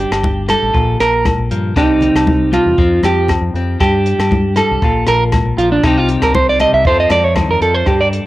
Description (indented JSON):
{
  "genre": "highlife guitar band",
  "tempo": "118 BPM",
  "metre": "4/4",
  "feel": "swing 53% on 16ths",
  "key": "unclear",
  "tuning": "A4 = 439 Hz",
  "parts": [
    { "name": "clean electric guitar", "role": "accompaniment", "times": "0.0-8.3 s", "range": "G2 to A4", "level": "-19 LUFS", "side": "left 4 dB", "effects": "cassette tape" },
    { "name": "clean electric guitar", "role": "arpeggios", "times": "0.0-8.1 s", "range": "D4 to E5", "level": "-14 LUFS", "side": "right 2 dB", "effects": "spring reverb, cassette tape, tape echo" },
    { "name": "deep dub fingered electric bass", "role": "bass", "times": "0.0-8.2 s", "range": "G1 to G2", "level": "-19 LUFS", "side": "equal", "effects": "none" },
    { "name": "compact cocktail drum kit", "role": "drums", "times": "0.1-8.3 s", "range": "hi-hat, kick drum, rim click", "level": "-19 LUFS", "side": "equal", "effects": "none" },
    { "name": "agogo bells", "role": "percussion", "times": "0.1-8.0 s", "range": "none", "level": "-23 LUFS", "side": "left 3 dB", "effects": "none" },
    { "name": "congas", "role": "percussion", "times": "0.2-7.9 s", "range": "none", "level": "-23 LUFS", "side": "left 3 dB", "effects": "none" }
  ],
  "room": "light reverb",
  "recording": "home recording on cassette",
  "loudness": "-11 LUFS",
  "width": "side -16 dB against mid",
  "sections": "0.0-8.3 A section",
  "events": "clean electric guitar solo 0.0-8.3",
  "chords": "0.0 G5; 0.8 Bb5; 1.8 Cm; 2.8 F5; 3.8 G5; 4.8 Bb5; 5.8 Cm; 6.9 F",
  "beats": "0.24 0.75 1.26 | 1.77 2.28 2.79 3.29 | 3.80 4.31 4.82 5.33 | 5.84 6.34 6.85 7.36 | 7.87"
}